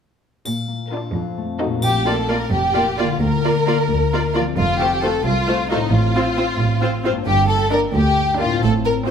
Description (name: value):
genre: cinematic, playful, whimsical film cue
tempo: 88 BPM (dotted quarters)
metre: 6/8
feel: straight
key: Bb major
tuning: A4 = 439 Hz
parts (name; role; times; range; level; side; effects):
- concert harp; arpeggios; 0.5-9.1 s; F2 to D5; -24 LUFS; left 6 dB; none
- warm studio cello section; bass; 0.5-9.1 s; C2 to Bb2; -24 LUFS; right 2 dB; none
- triangle; percussion; 0.5-2.7 s; none; -31 LUFS; left 3 dB; none
- warm studio violin section; melody; 0.9-9.1 s; A4 to D5; -29 LUFS; left 3 dB; none
- rich studio violin section; second line; 0.9-9.1 s; Eb4 to Bb4; -20 LUFS; left 2 dB; none
- rich studio viola section; accompaniment; 0.9-9.1 s; A3 to F4; -24 LUFS; right 2 dB; none
- rich studio double bass section; bass; 1.8-9.1 s; F1 to D2; -23 LUFS; right 3 dB; none
room: wet recital hall reverb, RT60 1.4 s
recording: minimal, uncompressed stereo recording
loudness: -16 LUFS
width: side -7 dB against mid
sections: 0.5-1.8 A section; 1.8-9.1 B section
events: none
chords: 0.5 Bb; 1.1 F7b9; 1.8 Bb; 3.2 Bb/D; 4.6 F; 5.9 F/A; 7.3 Gm